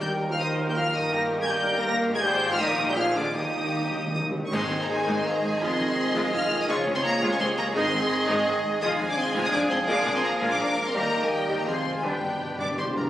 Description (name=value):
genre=classical, dramatic, fast romantic movement for symphony orchestra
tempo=166 BPM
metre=3/4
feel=rubato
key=Eb major, Ab major from 4.5 s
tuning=A4 = 440 Hz
part: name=rich symphonic violin section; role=melody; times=0.0-13.0 s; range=G5 to Bb6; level=-29 LUFS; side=left 1 dB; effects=none
part: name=clear symphonic violin section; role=second line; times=0.0-13.0 s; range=D4 to Ab5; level=-34 LUFS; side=left 2 dB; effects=none
part: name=dark clarinet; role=second line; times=0.0-12.2 s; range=D4 to Bb4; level=-36 LUFS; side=equal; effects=none
part: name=small flute group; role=second line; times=0.0-13.1 s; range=B4 to D6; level=-35 LUFS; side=left 1 dB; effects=none
part: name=mellow French horn section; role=sustained chords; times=0.0-12.9 s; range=D3 to F4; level=-32 LUFS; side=equal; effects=none
part: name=mellow trombone section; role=sustained chords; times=0.0-12.9 s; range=B2 to C4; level=-34 LUFS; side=right 2 dB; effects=none
part: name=concert harp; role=arpeggios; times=0.0-13.1 s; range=F2 to Bb5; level=-33 LUFS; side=left 1 dB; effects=none
part: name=mellow trumpet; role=stabs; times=0.0-13.1 s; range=D4 to D5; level=-32 LUFS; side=right 1 dB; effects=none
part: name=rich symphonic cello section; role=bass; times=0.0-13.0 s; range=Db2 to Bb2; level=-36 LUFS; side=right 2 dB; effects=none
part: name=rich symphonic double bass section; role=bass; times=0.0-13.0 s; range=F1 to Eb2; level=-40 LUFS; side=right 2 dB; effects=none
part: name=timpani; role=percussion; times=0.0-0.5, 3.4-4.5, 12.0-13.1 s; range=G2 to Eb3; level=-34 LUFS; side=equal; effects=none
part: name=clear symphonic viola section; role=accompaniment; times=0.4-13.0 s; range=G3 to C5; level=-33 LUFS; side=equal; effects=none
part: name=mellow bassoon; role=accompaniment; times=4.5-12.2 s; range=D3 to Ab3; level=-37 LUFS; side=right 1 dB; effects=none
part: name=clash cymbals and concert bass drum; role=percussion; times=4.5-5.2 s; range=none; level=-39 LUFS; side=equal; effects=none
room=wet scoring stage reverb, RT60 1.9 s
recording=recorded on a phone in the room, studio ambience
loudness=-22 LUFS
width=side -12 dB against mid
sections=0.0-4.5 A section; 4.5-13.1 B section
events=timpani fill 3.4-4.5, 12.0-13.1; band accent 4.5-4.9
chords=0.0 Eb5; 1.1 Eb/G; 2.2 Fm/Ab; 2.6 Eb/Bb; 3.0 Bb9; 3.4 Eb; 4.5 Ab; 5.6 Fm7; 6.7 Db; 7.8 Ab; 8.8 Fm7; 9.9 Bb7; 10.9 Eb; 11.7 Fm; 12.0 G